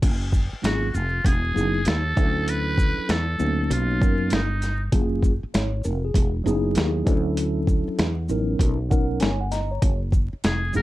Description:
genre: hip hop, jazz-hop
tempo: 98 BPM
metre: 4/4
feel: swing 64% on 16ths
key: unclear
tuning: A4 = 439 Hz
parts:
  - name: woody fretless electric bass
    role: bass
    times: 0.0-10.8 s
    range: E1 to F#2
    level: -25 LUFS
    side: equal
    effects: analog chorus
  - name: boom bap sampler-style drum kit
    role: drums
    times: 0.0-10.8 s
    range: crash cymbal, hi-hat, kick drum, shaker, snare drum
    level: -22 LUFS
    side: equal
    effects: overdrive
  - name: mellow tine electric piano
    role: accompaniment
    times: 0.6-10.8 s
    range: E#3 to A#5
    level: -26 LUFS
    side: equal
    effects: medium stereo tremolo
  - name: trumpet with metal mute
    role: melody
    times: 0.7-4.8, 10.5-10.8 s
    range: D#4 to B4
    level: -27 LUFS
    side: equal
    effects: slapback echo
room: little or no reverb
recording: vinyl crackle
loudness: -20 LUFS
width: side -16 dB against mid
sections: 0.0-10.8 A section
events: tine electric piano fill 8.6-9.8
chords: 0.0 F#maj9; 1.3 Emaj9; 2.2 Dmaj9; 3.7 Bmaj9; 4.9 F#maj9; 6.2 Emaj9; 7.1 Dmaj9; 8.6 Bmaj9; 9.8 F#sus2

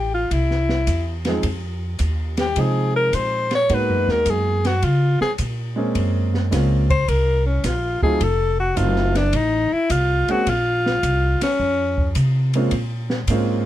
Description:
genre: jazz, small-group swing and bop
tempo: 106 BPM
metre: 4/4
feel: swing 68% on 8ths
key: Bb minor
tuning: A4 = 443 Hz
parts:
  - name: clear alto saxophone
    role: melody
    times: 0.0-12.1 s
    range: Db4 to Db5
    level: -20 LUFS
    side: left 2 dB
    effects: none
  - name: upright bass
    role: bass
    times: 0.0-13.7 s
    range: F1 to Db3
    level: -21 LUFS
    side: equal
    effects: none
  - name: open jazz drum kit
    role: drums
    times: 0.3-13.5 s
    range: hi-hat, kick drum, ride cymbal, snare drum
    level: -28 LUFS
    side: equal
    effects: none
  - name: warm grand piano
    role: accompaniment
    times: 1.3-13.6 s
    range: F3 to Ab4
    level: -23 LUFS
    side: right 2 dB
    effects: none
room: little or no reverb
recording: dark, warm production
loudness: -18 LUFS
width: side -13 dB against mid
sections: 0.0-13.7 A section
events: alto saxophone solo 0.0-13.7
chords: 0.3 C; 1.4 Fm7; 3.7 Abm9; 4.8 Db5; 6.0 Gbmaj9#11; 8.2 F7b9; 10.5 Bbm9

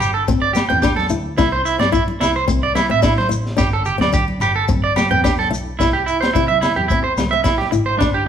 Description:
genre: highlife guitar band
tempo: 109 BPM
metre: 4/4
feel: swing 53% on 16ths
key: C major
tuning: A4 = 440 Hz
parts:
  - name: electric guitar at the edge of break-up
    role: arpeggios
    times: 0.0-8.2 s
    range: D4 to G5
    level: -18 LUFS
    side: right 4 dB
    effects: none
  - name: rich double bass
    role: bass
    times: 0.0-8.1 s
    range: G1 to C3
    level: -24 LUFS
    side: equal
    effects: none
  - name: agogo bells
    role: percussion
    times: 0.0-8.2 s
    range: none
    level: -28 LUFS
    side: left 9 dB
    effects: none
  - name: congas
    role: percussion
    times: 0.0-7.9 s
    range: none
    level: -29 LUFS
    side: right 1 dB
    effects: none
  - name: shekere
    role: percussion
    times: 0.0-8.1 s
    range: none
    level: -28 LUFS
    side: left 3 dB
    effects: none
  - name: flamenco guitar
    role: accompaniment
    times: 0.3-8.2 s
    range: B3 to E4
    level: -23 LUFS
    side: left 6 dB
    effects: none
  - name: crunchy breakbeat drum kit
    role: drums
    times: 0.3-8.1 s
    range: kick drum, snare drum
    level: -22 LUFS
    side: equal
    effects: none
room: moderate large studio reverb, RT60 1.2 s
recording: band playing live in one room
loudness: -15 LUFS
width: side -8 dB against mid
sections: 0.0-5.8 A section; 5.8-8.3 B section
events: none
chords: 0.0 Gsus2; 1.4 Cadd9; 3.6 G5; 5.8 C

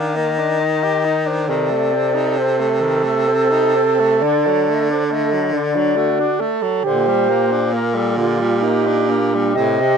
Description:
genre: classical, lyrical piece for single-reed quartet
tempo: 41-47 BPM (dotted quarters)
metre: 12/8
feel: rubato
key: G minor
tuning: A4 = 443 Hz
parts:
  - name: dark clarinet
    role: melody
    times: 0.0-10.0 s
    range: G4 to F5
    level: -20 LUFS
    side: left 9 dB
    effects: none
  - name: clear tenor saxophone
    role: accompaniment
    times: 0.0-10.0 s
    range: A2 to G4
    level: -23 LUFS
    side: left 4 dB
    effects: none
  - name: clear baritone saxophone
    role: bass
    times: 0.0-10.0 s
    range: Bb2 to Eb3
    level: -21 LUFS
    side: right 2 dB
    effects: none
  - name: mellow alto saxophone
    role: second line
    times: 1.5-10.0 s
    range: D4 to A4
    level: -19 LUFS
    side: right 11 dB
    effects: none
room: little or no reverb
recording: close, detailed microphones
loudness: -15 LUFS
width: side -6 dB against mid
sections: 0.0-10.0 A section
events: none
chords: 0.0 Ebmaj7; 1.5 Adim/C; 4.2 D; 6.9 Gm/Bb

